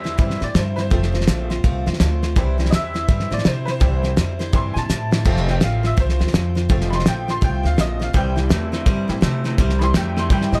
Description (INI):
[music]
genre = rockabilly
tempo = 166 BPM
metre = 4/4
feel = swing 63% on 8ths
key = C mixolydian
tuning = A4 = 440 Hz
[part]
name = picked steel-string acoustic guitar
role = accompaniment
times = 0.0-10.6 s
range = C3 to C5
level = -32 LUFS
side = equal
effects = none
[part]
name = tack piano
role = accompaniment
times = 0.0-10.6 s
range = E3 to C6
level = -29 LUFS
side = equal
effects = none
[part]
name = upright bass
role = bass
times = 0.0-10.6 s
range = F1 to C3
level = -24 LUFS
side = equal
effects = none
[part]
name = cloth-damped thuddy drum kit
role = drums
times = 0.1-10.6 s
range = crash cymbal, hi-hat, kick drum, snare drum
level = -22 LUFS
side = equal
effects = none
[part]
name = electric guitar through a small old amp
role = riff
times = 8.1-10.6 s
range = C3 to A3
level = -27 LUFS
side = equal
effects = lush chorus
[sound]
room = light reverb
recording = none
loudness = -19 LUFS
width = mono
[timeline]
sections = 0.0-10.6 A section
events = honky-tonk piano solo 0.0-10.6; drum fill 4.9-5.3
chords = 0.0 C; 0.9 F; 2.4 C; 5.3 F; 8.1 C